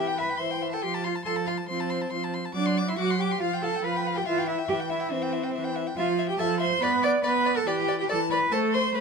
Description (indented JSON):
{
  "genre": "quick classical-period movement for string quartet",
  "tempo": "141 BPM",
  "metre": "4/4",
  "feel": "straight",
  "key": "C major",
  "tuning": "A4 = 440 Hz",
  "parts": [
    { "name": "rich violin", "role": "melody", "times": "0.0-9.0 s", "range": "C5 to D6", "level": "-32 LUFS", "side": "left 7 dB", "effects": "none" },
    { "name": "warm violin", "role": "second line", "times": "0.0-9.0 s", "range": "C5 to D6", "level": "-32 LUFS", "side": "left 5 dB", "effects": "none" },
    { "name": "warm viola", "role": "accompaniment", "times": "0.0-9.0 s", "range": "E3 to B3", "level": "-29 LUFS", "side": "right 2 dB", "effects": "none" },
    { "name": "warm cello", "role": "bass", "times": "0.0-9.0 s", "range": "C4 to D5", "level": "-28 LUFS", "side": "right 4 dB", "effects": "none" }
  ],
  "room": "light reverb",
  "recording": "minimal, uncompressed stereo recording",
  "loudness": "-24 LUFS",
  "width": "side -5 dB against mid",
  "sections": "0.0-9.0 A section",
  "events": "none",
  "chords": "0.0 C/E; 0.8 F; 2.6 D7/F#; 3.4 G7/F; 4.3 C/E; 6.0 Fmaj7; 6.8 Bm; 7.7 Em7",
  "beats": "0.41 | 0.84 1.27 1.70 2.13 | 2.55 2.98 3.42 3.84 | 4.27 4.69 5.12 5.55 | 5.97 6.40 6.82 7.25 | 7.67 8.10 8.52 8.95"
}